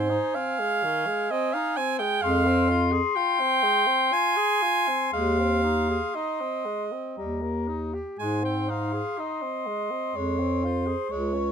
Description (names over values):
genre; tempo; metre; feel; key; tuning
classical, lyrical piece for single-reed quartet; 61 BPM; 3/4; uneven beats, rubato; Ab major; A4 = 442 Hz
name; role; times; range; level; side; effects
dark clarinet; melody; 0.0-11.5 s; Ab5 to Db6; -29 LUFS; left 7 dB; none
clear alto saxophone; second line; 0.0-11.5 s; C5 to Ab5; -27 LUFS; right 6 dB; none
warm tenor saxophone; accompaniment; 0.0-11.5 s; Eb3 to Ab4; -31 LUFS; left 3 dB; none
mellow bass clarinet; bass; 0.0-11.5 s; Db2 to Ab2; -25 LUFS; equal; none
room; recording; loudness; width
little or no reverb; close, detailed microphones; -23 LUFS; side -7 dB against mid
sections
0.0-11.5 A section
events
none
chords
0.0 Ab; 2.2 Fm; 5.1 Ab/Eb; 7.2 Eb; 8.2 Ab; 10.2 Fm